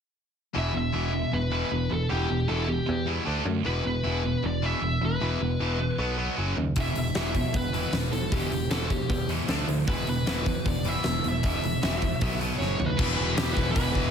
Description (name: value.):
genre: hard rock.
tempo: 154 BPM.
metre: 4/4.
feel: straight.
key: E minor.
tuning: A4 = 440 Hz.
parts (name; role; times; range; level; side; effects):
cranked stack guitar; riff; 0.5-14.1 s; E2 to D4; -32 LUFS; left 9 dB; overdrive.
tight distorted guitar; riff; 0.5-14.1 s; E2 to D4; -31 LUFS; right 11 dB; distortion.
biting lead guitar; melody; 0.6-14.1 s; G4 to E5; -32 LUFS; left 2 dB; overdrive, digital delay.
picked electric bass; bass; 0.6-14.1 s; E1 to F#2; -30 LUFS; equal; none.
huge arena drum kit; drums; 6.8-14.0 s; crash cymbal, hi-hat, kick drum, snare drum, toms; -28 LUFS; equal; none.
distorted electric guitar; riff; 13.0-14.1 s; E3 to G4; -34 LUFS; left 1 dB; overdrive.
room: light reverb, small room ambience.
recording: none.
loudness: -24 LUFS.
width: side -7 dB against mid.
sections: 0.6-13.0 A section; 13.0-14.1 B section.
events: drum fill 12.6-13.0.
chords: 0.6 Em; 3.3 D5; 3.7 E5; 6.0 B5; 6.4 F#5; 6.8 Em; 9.5 D5; 9.9 E5; 12.2 B5; 12.6 F#5; 13.0 Em.